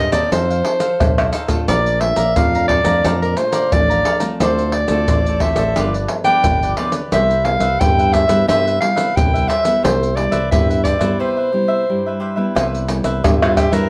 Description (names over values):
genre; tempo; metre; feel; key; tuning
samba and choro; 88 BPM; 4/4; straight; C major; A4 = 441 Hz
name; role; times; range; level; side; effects
warm soprano saxophone; melody; 0.0-13.9 s; F4 to G5; -20 LUFS; equal; plate reverb
cavaquinho; accompaniment; 0.0-13.9 s; Eb4 to Bb5; -28 LUFS; equal; none
nylon-string guitar; accompaniment; 0.0-13.9 s; G2 to A4; -26 LUFS; equal; none
fingered electric bass with an envelope filter; bass; 0.0-13.9 s; G1 to G2; -23 LUFS; equal; none
maracas, pandeiro, surdo and tamborim; percussion; 0.1-13.9 s; none; -21 LUFS; equal; none
room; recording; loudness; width
moderate small room reverb, RT60 0.5 s; none; -16 LUFS; mono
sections
0.0-12.6 A section; 12.6-13.9 B section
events
drum fill 1.0-1.7; break 11.2-12.6; soprano saxophone solo 12.6-13.9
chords
0.3 F7; 1.7 Bbmaj7; 4.4 Dm7; 5.8 G7; 7.1 Cmaj7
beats
0.32 1.00 | 1.69 2.37 3.05 3.73 | 4.41 5.09 5.77 6.45 | 7.13 7.81 8.49 9.17 | 9.85 10.53 11.21 11.89 | 12.57 13.25